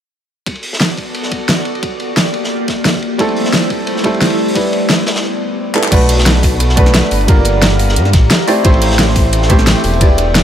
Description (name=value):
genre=liquid drum and bass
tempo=176 BPM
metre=4/4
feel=straight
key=B phrygian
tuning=A4 = 440 Hz
part: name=glassy FM pad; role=sustained chords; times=0.7-10.4 s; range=A3 to C6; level=-20 LUFS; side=left 1 dB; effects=ensemble chorus, built-in reverb, sidechain pumping
part: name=crunchy breakbeat drum kit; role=drums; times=0.5-10.4 s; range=hi-hat, ride cymbal, snare drum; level=-21 LUFS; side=equal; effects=high-pass filter on cymbals, high-pass filter on hats, high-pass filter on snare, high-pass filter on room
part: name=electronic kick drum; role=drums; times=0.5-10.1 s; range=none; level=-12 LUFS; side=equal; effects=overdrive, high-pass filter on kick, high-pass filter on room
part: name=pop drum kit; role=drums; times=0.8-10.4 s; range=crash cymbal, handclaps, hi-hat, snare drum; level=-15 LUFS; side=equal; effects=overdrive
part: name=clear baby grand piano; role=accompaniment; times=3.2-10.4 s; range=G3 to D5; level=-16 LUFS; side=right 2 dB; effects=ping-pong delay
part: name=dark detuned saw bass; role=bass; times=5.9-10.4 s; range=E1 to G2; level=-14 LUFS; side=equal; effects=none
room=light reverb, small room reverb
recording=none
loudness=-10 LUFS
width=side -10 dB against mid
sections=0.5-5.9 A section; 5.9-10.4 B section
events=break 5.2-5.9; drum fill 5.8; drop 5.9-10.4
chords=0.5 Bm7; 1.8 Gm7; 3.0 Am7; 4.6 Em7; 5.9 Bm7; 7.3 Gm7; 8.5 Am7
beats=| 0.47 0.81 1.15 1.49 | 1.83 2.17 2.51 2.85 | 3.19 3.53 3.88 4.21 | 4.56 4.90 5.24 5.58 | 5.92 6.26 6.60 6.94 | 7.28 7.62 7.96 8.31 | 8.65 8.99 9.33 9.67 | 10.01 10.35